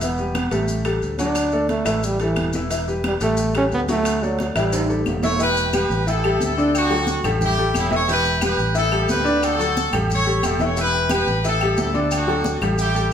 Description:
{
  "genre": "latin, salsa",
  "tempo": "178 BPM",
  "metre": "4/4",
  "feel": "straight",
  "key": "D major",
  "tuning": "A4 = 440 Hz",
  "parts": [
    { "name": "clear trombone", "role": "melody", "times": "0.0-5.0 s", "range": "E3 to D4", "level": "-22 LUFS", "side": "right 2 dB", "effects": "none" },
    { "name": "clear grand piano", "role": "accompaniment", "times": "0.0-13.1 s", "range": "D3 to F#5", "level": "-23 LUFS", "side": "left 2 dB", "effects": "none" },
    { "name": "fingered electric bass", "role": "bass", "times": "0.0-13.1 s", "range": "E1 to D2", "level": "-25 LUFS", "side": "equal", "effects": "none" },
    { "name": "congas", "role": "percussion", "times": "0.0-13.1 s", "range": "none", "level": "-30 LUFS", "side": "left 2 dB", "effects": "none" },
    { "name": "maracas", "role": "percussion", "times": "0.0-13.1 s", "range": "none", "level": "-34 LUFS", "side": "left 3 dB", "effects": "none" },
    { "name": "timbales and agogo bells", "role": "percussion", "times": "0.0-13.0 s", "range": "none", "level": "-28 LUFS", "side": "right 3 dB", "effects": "none" },
    { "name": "claves", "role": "percussion", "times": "0.3-12.8 s", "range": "none", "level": "-34 LUFS", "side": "left 6 dB", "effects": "none" },
    { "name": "brilliant horn section", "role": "melody", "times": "5.2-13.1 s", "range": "C#4 to C#5", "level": "-22 LUFS", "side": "equal", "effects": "none" }
  ],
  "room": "wet large studio reverb, RT60 1.2 s",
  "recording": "band playing live in one room",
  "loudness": "-18 LUFS",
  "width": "side -8 dB against mid",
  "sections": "0.0-5.4 A section; 5.4-13.1 B section",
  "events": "drum fill 4.7-5.4",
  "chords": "0.0 Em; 0.7 Dadd11/A; 1.4 D; 2.0 A5; 2.7 Em; 3.4 A7(no3); 4.1 D; 4.7 A5; 5.4 Em; 6.1 A5; 6.7 D; 7.4 A7; 8.1 Em; 8.8 A5; 9.4 D; 10.1 A7; 10.8 Em; 11.4 A5; 12.1 D",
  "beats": "| 0.01 0.35 0.69 1.02 | 1.36 1.70 2.03 2.37 | 2.71 3.04 3.38 3.71 | 4.05 4.39 4.72 5.06 | 5.40 5.73 6.07 6.40 | 6.74 7.08 7.41 7.75 | 8.08 8.42 8.76 9.09 | 9.43 9.76 10.10 10.44 | 10.77 11.11 11.44 11.78 | 12.12 12.45 12.79 13.12"
}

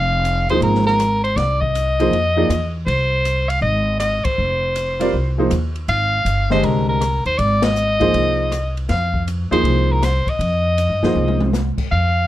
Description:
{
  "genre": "modal jazz",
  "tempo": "160 BPM",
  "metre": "4/4",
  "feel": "swing 66% on 8ths",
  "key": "F dorian",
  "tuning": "A4 = 440 Hz",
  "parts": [
    { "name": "warm soprano saxophone", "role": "melody", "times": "0.0-12.3 s", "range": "Bb4 to F5", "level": "-19 LUFS", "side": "left 1 dB", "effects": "none" },
    { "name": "upright bass", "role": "bass", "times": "0.0-12.3 s", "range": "F1 to G2", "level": "-20 LUFS", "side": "equal", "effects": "none" },
    { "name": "open jazz drum kit", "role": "drums", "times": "0.2-11.8 s", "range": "crash cymbal, hi-hat, kick drum, ride cymbal, rim click, snare drum, toms", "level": "-28 LUFS", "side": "left 1 dB", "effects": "none" },
    { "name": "clear grand piano", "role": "accompaniment", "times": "0.5-2.5, 5.0-11.5 s", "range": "D3 to Eb5", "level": "-19 LUFS", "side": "right 1 dB", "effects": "none" }
  ],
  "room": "little or no reverb",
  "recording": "close, detailed microphones",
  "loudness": "-16 LUFS",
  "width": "side -14 dB against mid",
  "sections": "0.0-12.3 A section",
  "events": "band accent 4.2, 7.6; drum fill 11.2-11.5",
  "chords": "0.0 Fm7",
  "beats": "0.25 0.63 1.00 | 1.38 1.75 2.13 2.51 | 2.88 3.26 3.63 4.01 | 4.38 4.76 5.14 5.51 | 5.89 6.26 6.64 7.02 | 7.39 7.77 8.15 8.52 | 8.90 9.28 9.65 10.03 | 10.40 10.78 11.16 11.53 | 11.91"
}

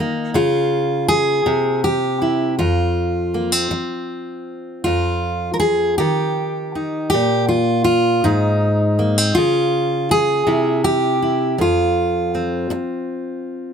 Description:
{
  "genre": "folk, solo fingerstyle acoustic guitar",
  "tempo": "54 BPM (dotted quarters)",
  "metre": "6/8",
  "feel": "rubato",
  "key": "F minor",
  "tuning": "A4 = 440 Hz",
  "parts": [
    { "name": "fingerpicked steel-string acoustic guitar", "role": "solo", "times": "0.0-13.7 s", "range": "F2 to Bb4", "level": "-16 LUFS", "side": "equal", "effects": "none" }
  ],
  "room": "little or no reverb",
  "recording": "close, detailed microphones",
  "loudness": "-16 LUFS",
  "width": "side -7 dB against mid",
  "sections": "0.0-4.9 A section; 4.9-13.7 A section",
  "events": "none",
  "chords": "0.4 N.C.; 1.5 C; 2.6 F5; 4.9 N.C.; 8.2 Ab; 9.4 N.C.; 10.5 C; 11.6 F5",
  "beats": "| 0.36 1.46 | 2.58 3.71 | 4.86 6.00 | 7.13 8.24 | 9.35 10.46 | 11.58 12.71"
}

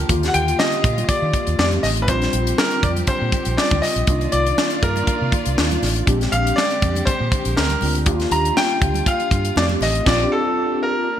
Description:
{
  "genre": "polished 1980s jazz-funk pop",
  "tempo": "120 BPM",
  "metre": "4/4",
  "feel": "swing 54% on 16ths",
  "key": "unclear",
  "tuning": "A4 = 439 Hz",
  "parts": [
    { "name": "mellow tine electric piano", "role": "accompaniment", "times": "0.0-11.2 s", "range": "D3 to A4", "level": "-24 LUFS", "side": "left 1 dB", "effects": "ensemble chorus" },
    { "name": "warm studio string section", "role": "sustained chords", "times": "0.0-11.2 s", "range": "C3 to D5", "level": "-30 LUFS", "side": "right 1 dB", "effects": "none" },
    { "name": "vintage muted fingered electric bass", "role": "bass", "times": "0.0-10.2 s", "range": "A1 to Eb3", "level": "-22 LUFS", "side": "right 1 dB", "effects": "tube saturation" },
    { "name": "tight funk drum kit", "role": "drums", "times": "0.1-10.2 s", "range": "crash cymbal, hi-hat, kick drum, snare drum", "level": "-21 LUFS", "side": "equal", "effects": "gated reverb" },
    { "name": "congas", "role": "percussion", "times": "0.1-9.9 s", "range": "none", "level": "-35 LUFS", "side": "right 6 dB", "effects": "none" },
    { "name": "bright concert grand piano", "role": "melody", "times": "0.3-11.2 s", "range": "A4 to Bb5", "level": "-22 LUFS", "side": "equal", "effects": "none" }
  ],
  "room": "light reverb, studio reverb",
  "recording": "bright 1980s-style digital production",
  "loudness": "-16 LUFS",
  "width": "side -10 dB against mid",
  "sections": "0.0-11.2 A section",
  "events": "band accent 10.1-11.2",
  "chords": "0.1 Ebmaj9; 1.6 F7; 2.1 Bb69; 4.1 Cm11; 6.1 Bb13; 8.1 Ebmaj9; 9.6 F7; 10.1 Bb69",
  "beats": "| 0.09 0.59 1.09 1.58 | 2.08 2.58 3.08 3.58 | 4.08 4.58 5.07 5.57 | 6.07 6.57 7.07 7.57 | 8.06 8.56 9.06 9.56 | 10.06 10.56 11.06"
}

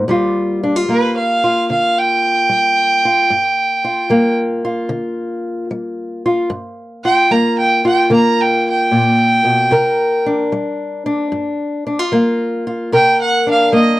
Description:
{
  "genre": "acoustic country blues, solo or duo",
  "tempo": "75 BPM",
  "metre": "4/4",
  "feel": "swing 68% on 8ths",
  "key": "unclear",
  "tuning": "A4 = 440 Hz",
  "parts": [
    { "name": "fingerpicked old ladder-braced acoustic guitar", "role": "accompaniment", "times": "0.0-14.0 s", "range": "G2 to Bb4", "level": "-16 LUFS", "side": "left 1 dB", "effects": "none" },
    { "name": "warm fiddle", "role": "melody", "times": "0.9-14.0 s", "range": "B4 to A#5", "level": "-14 LUFS", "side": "right 1 dB", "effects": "none" }
  ],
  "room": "little or no reverb",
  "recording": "dry, close 1970s-style studio recording",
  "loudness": "-13 LUFS",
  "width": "side -17 dB against mid",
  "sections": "0.0-12.9 A section; 12.9-14.0 B section",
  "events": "fiddle solo 12.9-14.0",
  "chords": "0.1 Gm7; 9.7 Csus2; 11.3 Gm7; 12.9 Csus2",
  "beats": "| 0.07 0.88 1.68 2.48 | 3.29 4.09 4.89 5.69 | 6.50 7.30 8.10 8.90 | 9.71 10.51 11.31 12.12 | 12.92 13.72"
}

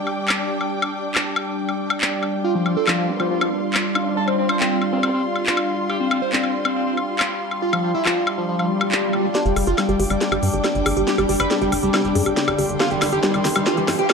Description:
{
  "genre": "psychedelic trance",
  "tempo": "139 BPM",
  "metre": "4/4",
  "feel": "straight",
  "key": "unclear",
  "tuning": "A4 = 440 Hz",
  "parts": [
    { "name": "evolving wavetable pad", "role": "sustained chords", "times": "0.0-14.1 s", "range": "G3 to D4", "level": "-25 LUFS", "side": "left 1 dB", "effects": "phaser, built-in reverb" },
    { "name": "dark chamber string section", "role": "texture", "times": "0.0-14.1 s", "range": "D4 to D6", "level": "-28 LUFS", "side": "equal", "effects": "none" },
    { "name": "drum and bass drum kit", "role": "drums", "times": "0.1-14.1 s", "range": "handclaps, hi-hat, snare drum, woodblock", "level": "-23 LUFS", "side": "left 1 dB", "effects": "none" },
    { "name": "overdriven synth lead", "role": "melody", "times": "2.4-14.1 s", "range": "F3 to C5", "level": "-23 LUFS", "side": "equal", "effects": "distortion, phaser, dub echo" },
    { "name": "vowel-sweep wobble bass", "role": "second line", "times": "3.1-5.1 s", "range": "B3 to D4", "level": "-33 LUFS", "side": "right 1 dB", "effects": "none" },
    { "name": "swell and riser", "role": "sound effects", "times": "8.6-14.1 s", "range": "none", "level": "-27 LUFS", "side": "left 1 dB", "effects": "none" },
    { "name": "woody wave-folded pluck", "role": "riff", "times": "9.3-14.1 s", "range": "G4 to Ab4", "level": "-25 LUFS", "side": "moving between equal and right 8 dB", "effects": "chorus, auto-pan, dub echo" },
    { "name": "tight sequencer bass", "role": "bass", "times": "9.5-14.1 s", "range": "G1 to G2", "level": "-25 LUFS", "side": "equal", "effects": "none" }
  ],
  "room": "moderate plate reverb, RT60 1.2 s, digital ambience",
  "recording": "dark, warm production, high-pass filter",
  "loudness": "-18 LUFS",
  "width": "side -5 dB against mid",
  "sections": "0.0-9.3 A section; 9.3-14.1 B section",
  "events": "filter sweep on ambient pad 0.0-9.3; swell 8.6-9.3; build-up 9.3-14.1; drum fill 9.3-14.1; riser 9.3-14.1; filter sweep on synth arpeggio sound 9.3-14.1",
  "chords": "0.0 G5",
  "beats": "0.28 | 0.71 1.15 1.58 2.01 | 2.44 2.87 3.31 3.74 | 4.17 4.60 5.03 5.46 | 5.89 6.33 6.76 7.19 | 7.62 8.05 8.48 8.92 | 9.35 9.78 10.21 10.64 | 11.07 11.51 11.94 12.37 | 12.80 13.23 13.66 14.10"
}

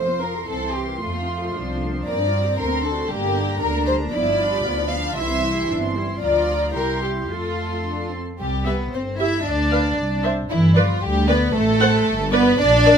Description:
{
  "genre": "quick classical-period movement for string orchestra",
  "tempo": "115 BPM",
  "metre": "2/4",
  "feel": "straight",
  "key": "F major, C major from 8.4 s",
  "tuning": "A4 = 441 Hz",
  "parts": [
    { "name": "rich studio violin section", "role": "melody", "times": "0.0-13.0 s", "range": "E4 to C6", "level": "-29 LUFS", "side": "equal", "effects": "none" },
    { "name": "warm studio violin section", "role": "second line", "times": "0.0-13.0 s", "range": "E4 to F5", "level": "-24 LUFS", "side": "equal", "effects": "none" },
    { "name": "dark studio viola section", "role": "accompaniment", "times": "0.0-13.0 s", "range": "D3 to F#5", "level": "-25 LUFS", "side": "right 1 dB", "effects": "none" },
    { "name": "warm studio double bass section", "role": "bass", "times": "0.0-13.0 s", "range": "G1 to G2", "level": "-25 LUFS", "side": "equal", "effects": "none" },
    { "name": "warm studio cello section", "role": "bass", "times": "0.5-13.0 s", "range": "E3 to A4", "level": "-23 LUFS", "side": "right 1 dB", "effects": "none" }
  ],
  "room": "little or no reverb",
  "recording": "close, detailed microphones",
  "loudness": "-18 LUFS",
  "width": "side -7 dB against mid",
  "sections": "0.0-8.4 A section; 8.4-13.0 B section",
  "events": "none",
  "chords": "0.5 C7; 1.0 F; 2.1 Gm7; 2.6 D7; 3.1 Gm; 4.1 G7; 5.2 C; 6.2 Bb/D; 6.8 C7; 7.3 F; 8.4 C; 9.5 Bdim/D; 10.0 C; 10.5 G; 11.6 F#dim/A; 12.1 G",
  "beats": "0.48 | 1.01 1.54 | 2.06 2.59 | 3.11 3.62 | 4.14 4.66 | 5.18 5.70 | 6.22 6.76 | 7.30 7.85 | 8.40 8.93 | 9.46 9.99 | 10.51 11.03 | 11.55 12.07 | 12.60"
}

